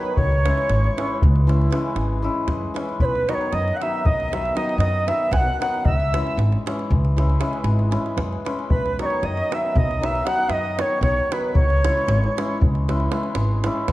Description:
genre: balkan folk, Balkan wedding band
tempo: 232 BPM (eighths)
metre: 11/8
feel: straight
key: C# minor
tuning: A4 = 441 Hz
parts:
  - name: bright reedy ney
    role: melody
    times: 0.0-12.6 s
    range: B4 to G#5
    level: -24 LUFS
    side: equal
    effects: none
  - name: mellow accordion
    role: second line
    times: 0.0-12.6 s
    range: B4 to F#5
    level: -29 LUFS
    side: right 4 dB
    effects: none
  - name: hammered dulcimer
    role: accompaniment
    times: 0.0-13.9 s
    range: D#3 to E4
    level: -27 LUFS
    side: left 2 dB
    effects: none
  - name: davul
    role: percussion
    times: 0.1-13.9 s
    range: none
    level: -24 LUFS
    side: equal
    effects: none
  - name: upright bass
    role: bass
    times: 0.2-13.9 s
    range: G#1 to F#2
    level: -22 LUFS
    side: equal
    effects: none
room: moderate recital hall reverb, RT60 1.4 s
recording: dark, warm production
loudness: -18 LUFS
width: side -16 dB against mid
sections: 0.0-13.9 A section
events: none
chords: 0.2 C#m; 3.0 B; 5.8 C#m; 8.7 B; 11.6 C#m

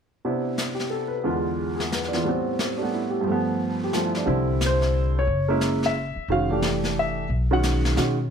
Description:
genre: jazz piano trio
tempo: 179 BPM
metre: 3/4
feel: swing 63% on 8ths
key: C major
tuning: A4 = 438 Hz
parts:
  - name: clear concert grand piano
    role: melody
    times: 0.2-8.2 s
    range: E2 to F#5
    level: -23 LUFS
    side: right 1 dB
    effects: none
  - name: jazz brush drum kit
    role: drums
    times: 0.2-8.3 s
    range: brushed snare drum, hi-hat, snare drum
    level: -30 LUFS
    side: left 2 dB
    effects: none
  - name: upright bass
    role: bass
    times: 4.3-8.3 s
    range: F1 to B2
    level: -24 LUFS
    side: left 1 dB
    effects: none
room: light reverb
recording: none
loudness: -22 LUFS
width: side -7 dB against mid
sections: 0.2-4.3 A section; 4.3-8.3 B section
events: none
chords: 0.2 Cmaj9; 1.3 E7b9; 2.3 Am9; 3.3 G9; 4.3 C; 5.3 F#9; 6.3 Fmaj7; 7.3 B

